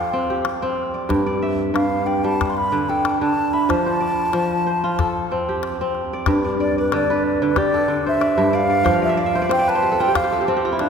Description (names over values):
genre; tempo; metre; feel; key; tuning
west african traditional, West African string and xylophone music; 93 BPM; 4/4; swing 53% on 16ths; G mixolydian; A4 = 439 Hz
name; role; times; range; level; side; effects
baroque flute; melody; 0.0-10.5 s; B4 to C6; -21 LUFS; right 1 dB; none
kora; arpeggios; 0.0-10.9 s; G2 to F5; -20 LUFS; equal; none
calabash; percussion; 0.3-10.9 s; none; -28 LUFS; left 4 dB; none
room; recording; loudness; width
wet cathedral reverb, RT60 4.8 s; recorded in a church or concert hall; -17 LUFS; side -6 dB against mid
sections
0.0-6.3 A section; 6.3-10.9 B section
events
flute solo 6.3-10.9; kora fill 8.9-10.9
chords
0.0 F; 1.1 G5; 3.7 F; 6.3 G; 8.9 F5